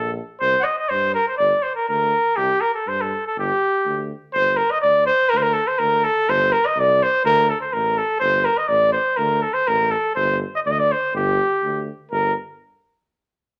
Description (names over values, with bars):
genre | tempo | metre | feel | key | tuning
balkan folk | 123 BPM | 2/4 | swing 53% on 16ths | G minor | A4 = 440 Hz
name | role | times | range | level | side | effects
clear flugelhorn | melody | 0.0-12.3 s | G4 to F#5 | -20 LUFS | equal | none
mellow tuba | bass | 0.0-12.3 s | G1 to G2 | -30 LUFS | equal | none
room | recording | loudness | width
moderate studio reverb, RT60 0.8 s | none | -20 LUFS | mono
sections
0.0-4.3 A section; 4.3-12.1 B section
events
none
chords
0.4 C5; 1.4 Gm; 2.4 C5; 3.4 G5; 5.3 Bbmaj7/D; 6.3 Gsus4; 7.2 D5; 8.2 Csus2/G; 9.2 D5; 10.2 G5; 12.1 Gm